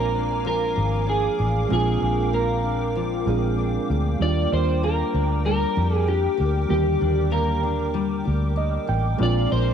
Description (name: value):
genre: indie pop, bedroom pop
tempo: 96 BPM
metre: 4/4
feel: straight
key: Eb major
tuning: A4 = 439 Hz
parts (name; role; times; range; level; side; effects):
- electric guitar through a small old amp; melody; 0.0-9.7 s; G4 to D5; -25 LUFS; right 1 dB; analog chorus, tape echo
- fingerpicked steel-string acoustic guitar; accompaniment; 0.0-9.7 s; Bb2 to Ab4; -30 LUFS; left 11 dB; wide subtle chorus, warbly pitch drift
- reed electric piano; accompaniment; 0.0-9.7 s; D3 to G5; -29 LUFS; right 10 dB; cassette tape
- hollow soft pad; sustained chords; 0.0-9.7 s; Bb4 to D6; -33 LUFS; right 2 dB; ensemble chorus
- vintage muted fingered electric bass; bass; 0.0-9.7 s; Ab1 to F2; -23 LUFS; equal; tube saturation
room: light reverb, digital ambience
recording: home recording on cassette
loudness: -20 LUFS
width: side -8 dB against mid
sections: 0.0-9.7 A section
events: reed electric piano fill 8.3-9.2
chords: 0.0 Bb7; 4.2 Ebmaj7; 9.2 Bb7